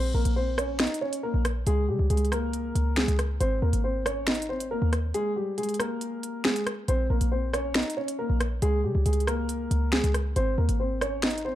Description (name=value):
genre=hip hop, drill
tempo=138 BPM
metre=4/4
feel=half-time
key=unclear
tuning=A4 = 440 Hz
part: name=dark concert grand piano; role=melody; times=0.0-11.6 s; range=G3 to Eb5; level=-29 LUFS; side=left 1 dB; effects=tape echo
part: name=short 808-style bass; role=bass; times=0.0-11.6 s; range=Ab1 to Db3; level=-26 LUFS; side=equal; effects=none
part: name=drill drum kit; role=drums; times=0.3-11.4 s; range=finger snaps, hi-hat, rim click, snare drum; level=-29 LUFS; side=equal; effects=none
room=little or no reverb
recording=dark, warm production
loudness=-24 LUFS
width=side -13 dB against mid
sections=0.0-11.6 A section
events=break 5.1-6.9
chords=0.0 Bbmadd9; 1.7 Db5; 3.4 Abadd9; 5.1 N.C.; 6.9 Bbmadd9; 8.6 Db5; 10.4 Abadd9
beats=0.36 0.80 1.23 | 1.67 2.10 2.54 2.97 | 3.40 3.84 4.28 4.71 | 5.14 5.58 6.01 6.45 | 6.88 7.32 7.75 8.19 | 8.62 9.06 9.49 9.93 | 10.36 10.80 11.23